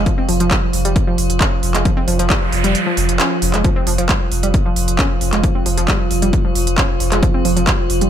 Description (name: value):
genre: driving peak-time techno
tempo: 134 BPM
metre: 4/4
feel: straight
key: unclear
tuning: A4 = 440 Hz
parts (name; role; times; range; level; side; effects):
- analog pluck; riff; 0.0-8.1 s; F3 to Db4; -22 LUFS; equal; chorus, sidechain pumping, tape echo
- saturated sub bass; bass; 0.0-8.1 s; F1; -20 LUFS; equal; tube saturation, sidechain pumping, low-pass filter
- metallic inharmonic drone; drone; 0.0-8.1 s; F3 to F4; -22 LUFS; right 2 dB; chorus, built-in reverb, sidechain pumping
- electronic kick drum; drums; 0.1-7.8 s; none; -17 LUFS; equal; none
- techno drum kit; drums; 0.1-8.1 s; handclaps, hi-hat; -20 LUFS; right 1 dB; sidechain pumping on hats
- noise sweep; sound effects; 2.1-3.6 s; none; -25 LUFS; right 3 dB; none
room: light reverb, digital ambience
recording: none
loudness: -14 LUFS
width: side -10 dB against mid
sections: 0.0-8.1 A section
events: noise sweep 2.1-3.6; kick drops out 2.7-3.6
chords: none